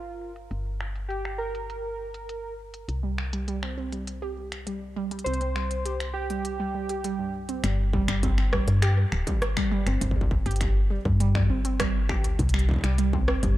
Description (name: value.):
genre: IDM.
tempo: 101 BPM.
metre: 4/4.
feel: straight.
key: G minor.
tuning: A4 = 438 Hz.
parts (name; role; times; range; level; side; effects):
warbly lo-fi synth keys; melody; 0.0-7.3 s; F4 to C5; -33 LUFS; right 2 dB; chorus, tape echo.
woody FM bass; bass; 0.0-13.6 s; D1 to G2; -27 LUFS; equal; none.
industrial drum kit; drums; 0.4-13.5 s; finger snaps, hi-hat, rim click; -33 LUFS; equal; low-pass filter on hats, small room ambience, low-pass filter on snare, tape echo.
warbly dusty pluck; arpeggios; 3.0-13.6 s; G2 to G4; -31 LUFS; right 2 dB; chorus, phaser, tape echo.
electronic kick drum; drums; 7.9-13.5 s; none; -27 LUFS; equal; distortion, small room ambience.
room: little or no reverb.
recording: dark, warm production.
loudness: -24 LUFS.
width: side -15 dB against mid.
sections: 0.0-7.6 A section; 7.6-13.6 B section.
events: filter sweep on drum 0.0-7.6.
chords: 0.0 Gm; 2.9 C5; 7.6 G5; 12.4 C5.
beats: | 0.51 1.10 1.70 2.29 | 2.88 3.48 4.07 4.67 | 5.26 5.86 6.45 7.04 | 7.64 8.23 8.82 9.42 | 10.01 10.61 11.20 11.79 | 12.39 12.98 13.58.